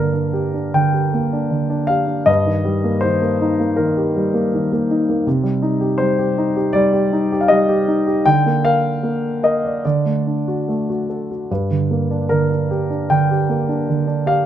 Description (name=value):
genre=classical, lyrical solo piano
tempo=71-84 BPM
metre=4/4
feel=rubato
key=G minor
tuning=A4 = 440 Hz
part: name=dark concert grand piano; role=solo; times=0.0-14.5 s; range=G2 to G5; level=-16 LUFS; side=equal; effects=none
room=light reverb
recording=close, detailed microphones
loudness=-16 LUFS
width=side -10 dB against mid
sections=0.0-14.5 A section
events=none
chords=0.0 Gm; 2.3 Eb/G; 5.3 Cmadd9; 8.2 Ebmaj9/D; 9.8 D; 11.5 Gm